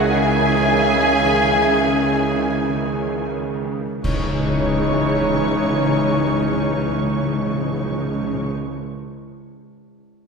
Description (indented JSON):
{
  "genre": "cinematic, emotional film score for orchestra",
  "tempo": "40-50 BPM",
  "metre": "4/4",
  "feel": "rubato",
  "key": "C# minor",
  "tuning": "A4 = 441 Hz",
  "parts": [
    { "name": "muted studio violin section", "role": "melody", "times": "0.0-8.5 s", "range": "G#5 to C#6", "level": "-26 LUFS", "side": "left 2 dB", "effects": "none" },
    { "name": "large flute ensemble", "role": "second line", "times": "0.0-8.5 s", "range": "C#5 to E5", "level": "-29 LUFS", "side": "equal", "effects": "none" },
    { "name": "mellow cor anglais", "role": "second line", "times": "0.0-8.5 s", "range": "C#4 to G#4", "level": "-27 LUFS", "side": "right 3 dB", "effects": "none" },
    { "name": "muted studio violin section", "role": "second line", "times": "0.0-8.5 s", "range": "G#4 to C#5", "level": "-26 LUFS", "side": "equal", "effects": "none" },
    { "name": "muted studio viola section", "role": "accompaniment", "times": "0.0-8.5 s", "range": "D#3 to D#4", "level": "-27 LUFS", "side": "right 2 dB", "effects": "none" },
    { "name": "mellow French horn section", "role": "sustained chords", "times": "0.0-8.5 s", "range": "C#3 to D#4", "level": "-25 LUFS", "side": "equal", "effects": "none" },
    { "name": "muted studio cello section", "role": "bass", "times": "0.0-8.5 s", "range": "C#3", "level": "-27 LUFS", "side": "right 3 dB", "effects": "none" },
    { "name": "muted studio double bass section", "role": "bass", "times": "0.0-8.5 s", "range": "C#2", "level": "-26 LUFS", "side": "right 2 dB", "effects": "none" },
    { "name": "timpani", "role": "percussion", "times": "0.0-8.5 s", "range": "C#3", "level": "-24 LUFS", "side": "left 2 dB", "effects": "none" },
    { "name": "clash cymbals and concert bass drum", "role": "percussion", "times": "4.0-6.9 s", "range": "none", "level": "-29 LUFS", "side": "equal", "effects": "none" }
  ],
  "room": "wet scoring stage reverb, RT60 2.0 s",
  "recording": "heard from further back in the room",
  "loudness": "-17 LUFS",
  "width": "side -5 dB against mid",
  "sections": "0.0-4.0 A section; 4.0-9.8 B section",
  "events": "slowing down 0.0-4.0; band accent 4.0-5.5",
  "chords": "0.0 C#madd9"
}